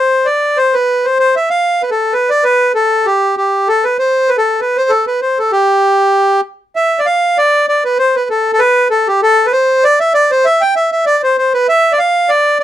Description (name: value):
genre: celtic folk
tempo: 195 BPM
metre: 4/4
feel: swing 54% on 8ths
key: G mixolydian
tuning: A4 = 441 Hz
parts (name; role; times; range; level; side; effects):
- accordion; solo; 0.0-12.6 s; G4 to G5; -10 LUFS; equal; none
room: light reverb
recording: dry, close 1970s-style studio recording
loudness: -10 LUFS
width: side -12 dB against mid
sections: 0.0-6.8 A section; 6.8-12.6 B section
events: none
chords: none